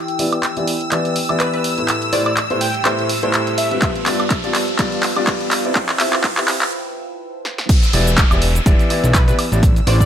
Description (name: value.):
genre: piano house.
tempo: 124 BPM.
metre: 4/4.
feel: swing 56% on 16ths.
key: unclear.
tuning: A4 = 440 Hz.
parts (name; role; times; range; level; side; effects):
string machine, violins; sustained chords; 0.0-10.1 s; E6; -28 LUFS; equal; ensemble chorus, sidechain pumping.
riser and downlifter; sound effects; 1.8-10.1 s; none; -28 LUFS; equal; none.
deep dark ambient pad; texture; 0.0-10.1 s; E4 to A5; -28 LUFS; right 2 dB; chorus, built-in reverb, sidechain pumping.
punchy analog drum machine; drums; 0.1-10.1 s; crash cymbal, handclaps, hi-hat, shaker, snare drum, woodblock; -20 LUFS; right 1 dB; none.
warm upright piano; riff; 0.2-10.0 s; G2 to E5; -20 LUFS; left 1 dB; sidechain pumping, low-pass filter.
plucky unison lead; melody; 1.4-3.9, 9.1-10.1 s; B4 to G5; -25 LUFS; equal; ping-pong delay.
electronic kick drum; drums; 3.8-10.1 s; none; -16 LUFS; equal; none.
breakbeat sampler-style drum kit; drums; 7.7-10.0 s; hi-hat, snare drum; -32 LUFS; equal; none.
fat analog bass; bass; 7.9-10.1 s; E1 to B1; -16 LUFS; equal; sidechain pumping.
room: light reverb.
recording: high-pass filter.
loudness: -14 LUFS.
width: side -9 dB against mid.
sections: 0.0-7.7 A section; 7.7-10.1 B section.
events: build-up 0.0-7.7; drum fill 0.0-6.7, 7.5; filter sweep on upright piano 0.0-7.7; riser 1.8-6.7; break 6.7-7.7; drop 7.7-10.1.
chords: 0.0 Em7; 1.9 G7; 5.8 C; 7.7 Em7.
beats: 0.43 0.92 1.40 | 1.89 2.37 2.85 3.34 | 3.82 4.30 4.79 5.27 | 5.76 6.24 6.72 7.21 | 7.69 8.18 8.66 9.14 | 9.63.